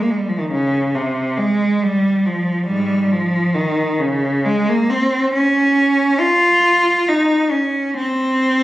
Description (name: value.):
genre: classical, free, expressive piece for unaccompanied cello.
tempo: 68 BPM.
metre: 3/4.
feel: rubato.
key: unclear.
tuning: A4 = 440 Hz.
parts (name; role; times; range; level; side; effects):
rich cello; solo; 0.0-8.6 s; Ab2 to F4; -14 LUFS; equal; none.
room: moderate recital hall reverb, RT60 1.5 s.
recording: recorded on a phone in the room, club reverb, compression.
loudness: -14 LUFS.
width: side -15 dB against mid.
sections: 0.0-8.6 A section.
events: none.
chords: none.